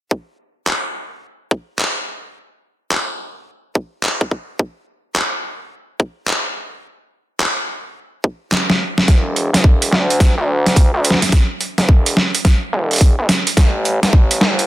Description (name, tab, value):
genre	glitch hop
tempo	107 BPM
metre	4/4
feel	swing 63% on 16ths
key	E minor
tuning	A4 = 440 Hz
part	electronic kick drum	drums	0.1-14.3 s	none	-12 LUFS	equal	high-pass filter on kick
part	boom bap sampler-style drum kit	drums	0.7-14.7 s	handclaps, hi-hat, snare drum	-17 LUFS	equal	overdrive
part	gritty driven synth bass	bass	9.1-14.7 s	E1 to D2	-18 LUFS	equal	tube saturation, high-pass filter
room	little or no reverb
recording	dense, heavily limited modern master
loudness	-14 LUFS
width	side -15 dB against mid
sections	0.1-9.1 A section; 9.1-14.7 B section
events	kick drops out 8.5-9.1; drum fill 8.5-9.1, 9.1-14.7; build-up 9.1-14.7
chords	none